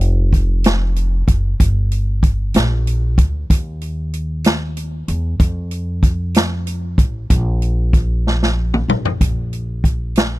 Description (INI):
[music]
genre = slow gospel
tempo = 63 BPM (dotted quarters)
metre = 6/8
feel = straight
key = unclear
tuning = A4 = 438 Hz
[part]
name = upright bass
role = bass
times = 0.0-10.4 s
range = F1 to F2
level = -18 LUFS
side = equal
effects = none
[part]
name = swinging big-band drum kit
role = drums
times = 0.0-10.3 s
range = hi-hat, kick drum, snare drum, toms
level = -15 LUFS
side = equal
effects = none
[sound]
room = little or no reverb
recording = dry, close 1970s-style studio recording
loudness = -15 LUFS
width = side -17 dB against mid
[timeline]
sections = 0.0-9.2 A section; 9.2-10.4 B section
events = drum fill 8.3-9.2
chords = none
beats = 0.65 | 1.60 2.55 | 3.50 4.45 | 5.40 6.36 | 7.31 8.26 | 9.21 10.16